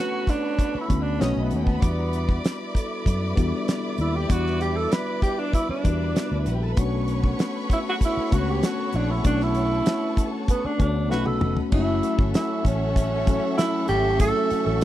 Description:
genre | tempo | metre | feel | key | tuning
lush 1970s-style soul | 97 BPM | 4/4 | straight | E dorian | A4 = 440 Hz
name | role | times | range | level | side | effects
mellow tenor saxophone | melody | 0.0-14.8 s | B3 to B4 | -26 LUFS | right 2 dB | none
warm studio violin section | second line | 0.0-14.8 s | C#4 to D#6 | -34 LUFS | equal | none
tine electric piano | accompaniment | 0.0-14.8 s | F#3 to C#5 | -28 LUFS | left 3 dB | lush chorus
warm studio string section | sustained chords | 0.0-14.8 s | E4 to C#6 | -36 LUFS | equal | none
vibraphone with soft mallets | texture | 0.0-11.4 s | E4 to B4 | -38 LUFS | right 2 dB | none
damped 70s drum kit | drums | 0.3-14.8 s | crash cymbal, hi-hat, kick drum, snare drum, toms | -22 LUFS | equal | none
vintage muted fingered electric bass | bass | 0.7-14.8 s | F1 to F#2 | -26 LUFS | equal | none
room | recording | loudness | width
small room ambience | dry, close 1970s-style studio recording | -21 LUFS | side -13 dB against mid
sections
0.0-11.7 A section; 11.7-14.8 B section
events
tenor saxophone solo 0.0-11.7; drum fill 11.1-11.7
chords
0.0 Bm7; 1.2 B7; 1.8 Em7; 6.8 Bm7; 11.1 B7; 11.7 F#m7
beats
0.59 1.21 | 1.83 2.45 3.06 3.68 | 4.30 4.92 5.54 6.16 | 6.78 7.40 8.02 8.63 | 9.25 9.87 10.49 11.11 | 11.73 12.35 12.96 13.58 | 14.20 14.82

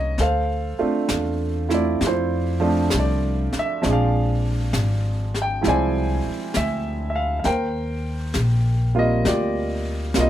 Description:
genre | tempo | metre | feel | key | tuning
jazz ballad | 66 BPM | 4/4 | swing 67% on 8ths | D minor | A4 = 440 Hz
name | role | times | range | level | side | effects
warm concert grand piano | accompaniment | 0.0-10.3 s | F3 to Ab5 | -22 LUFS | right 2 dB | none
upright bass | bass | 0.0-10.3 s | Ab1 to F2 | -23 LUFS | left 1 dB | none
jazz brush drum kit | drums | 0.2-10.3 s | brushed snare drum, hi-hat, snare drum | -29 LUFS | left 2 dB | none
room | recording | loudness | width
light reverb | none | -20 LUFS | side -12 dB against mid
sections
0.0-10.3 A section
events
none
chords
0.2 Dm9; 3.8 Bb9; 7.4 Eb69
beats
| 0.17 1.08 2.00 2.90 | 3.81 4.72 5.63 6.53 | 7.44 8.35 9.25 10.16

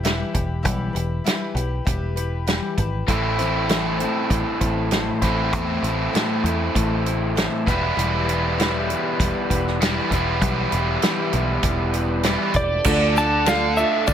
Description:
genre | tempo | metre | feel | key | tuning
folk rock and heartland rock | 98 BPM | 4/4 | straight | unclear | A4 = 441 Hz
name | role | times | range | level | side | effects
picked twelve-string acoustic guitar | accompaniment | 0.0-14.1 s | A2 to C5 | -27 LUFS | left 4 dB | none
picked electric bass | bass | 0.0-14.1 s | E1 to E2 | -25 LUFS | equal | none
natural country drum kit | drums | 0.0-14.1 s | crash cymbal, hi-hat, kick drum, ride cymbal, snare drum | -24 LUFS | right 1 dB | none
biting overdriven guitar | riff | 3.1-14.1 s | E2 to A4 | -23 LUFS | right 1 dB | none
electric slide guitar | melody | 12.6-14.1 s | D5 to A5 | -20 LUFS | right 2 dB | slapback echo
tonewheel organ | sustained chords | 12.6-14.1 s | G3 to C5 | -33 LUFS | equal | none
reed electric piano | accompaniment | 12.9-14.1 s | F4 to D5 | -30 LUFS | right 3 dB | fast tremolo
egg shaker | percussion | 12.9-14.1 s | none | -37 LUFS | right 5 dB | none
room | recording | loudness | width
light reverb, small room ambience | none | -19 LUFS | side -9 dB against mid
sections
0.0-12.9 A section; 12.9-14.1 B section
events
none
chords
0.0 Em; 3.1 Am; 7.7 Em; 12.9 Dm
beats
0.04 | 0.65 1.26 1.87 2.48 | 3.09 3.70 4.31 4.92 | 5.53 6.14 6.75 7.36 | 7.97 8.58 9.19 9.80 | 10.41 11.03 11.64 12.25 | 12.86 13.47 14.08

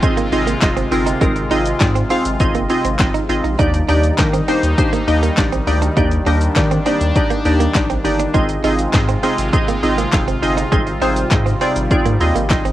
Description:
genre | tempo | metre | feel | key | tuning
dance-pop | 101 BPM | 4/4 | straight | unclear | A4 = 440 Hz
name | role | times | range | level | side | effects
glassy wavetable pluck | accompaniment | 0.0-12.7 s | Bb3 to F5 | -18 LUFS | equal | chorus, sidechain pumping, cassette tape
sweeping resonant pad | sustained chords | 0.0-12.7 s | C3 to F4 | -24 LUFS | left 1 dB | chorus, sidechain pumping, cassette tape
punchy analog drum machine | drums | 0.0-12.7 s | handclaps, hi-hat, kick drum, shaker, snare drum | -19 LUFS | equal | cassette tape
direct-recorded clean electric guitar | riff | 0.2-12.7 s | Ab3 to Eb4 | -24 LUFS | right 8 dB | wide subtle chorus, cassette tape
round analog bass | bass | 0.3-12.7 s | F1 to Eb3 | -20 LUFS | equal | sidechain pumping
group handclap | percussion | 0.6-12.6 s | none | -28 LUFS | left 11 dB | none
room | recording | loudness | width
little or no reverb | home recording on cassette | -14 LUFS | side -14 dB against mid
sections
0.0-12.7 A section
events
none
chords
0.0 Ab6; 3.6 Ebmaj7; 8.3 Ab6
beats
0.03 0.62 | 1.22 1.81 2.40 3.00 | 3.59 4.18 4.78 5.37 | 5.97 6.56 7.16 7.75 | 8.34 8.94 9.53 10.13 | 10.72 11.31 11.91 12.50

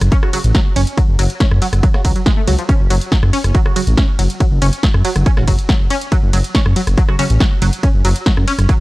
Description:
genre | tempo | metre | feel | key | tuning
driving peak-time techno | 140 BPM | 4/4 | straight | F# minor | A4 = 440 Hz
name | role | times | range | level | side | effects
dark detuned saw bass | bass | 0.0-8.7 s | F#1 to F#2 | -14 LUFS | equal | sidechain pumping
punchy analog drum machine | drums | 0.0-8.8 s | hi-hat, ride cymbal, rim click, snare drum | -22 LUFS | equal | none
tight sequenced synth | riff | 0.1-8.7 s | E#3 to C#4 | -22 LUFS | equal | chorus, cassette tape, sidechain pumping, analog delay
electronic kick drum | drums | 0.1-8.8 s | none | -14 LUFS | equal | overdrive
filtered dub chord stab | stabs | 0.2-7.3 s | C#3 to F#4 | -24 LUFS | right 2 dB | phaser, sidechain pumping, tape echo
room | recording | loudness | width
digital ambience | dry, gritty hardware recording | -12 LUFS | side -20 dB against mid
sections
0.0-8.8 A section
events
none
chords
0.0 F#5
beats
0.12 0.55 | 0.97 1.40 1.83 2.26 | 2.69 3.12 3.55 3.98 | 4.40 4.83 5.26 5.69 | 6.12 6.55 6.97 7.40 | 7.83 8.26 8.69

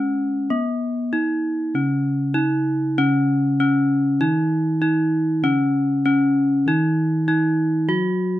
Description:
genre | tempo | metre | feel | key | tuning
gamelan | 98 BPM | 4/4 | straight | C# slendro | A4 = 440 Hz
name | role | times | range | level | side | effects
gamelan-type bronze metallophone | melody | 0.0-8.4 s | B3-40c to F#4-20c | -19 LUFS | equal | none
gamelan-type bronze metallophone | accompaniment | 0.0-8.4 s | C#3 to B3-40c | -25 LUFS | equal | none
room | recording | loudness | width
moderate booth ambience, RT60 0.2 s | dry, close 1970s-style studio recording | -18 LUFS | side -14 dB against mid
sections
0.0-1.7 A section; 1.7-8.4 B section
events
none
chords
none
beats
0.50 1.13 | 1.75 2.36 2.97 3.59 | 4.20 4.81 5.42 6.04 | 6.65 7.26 7.88

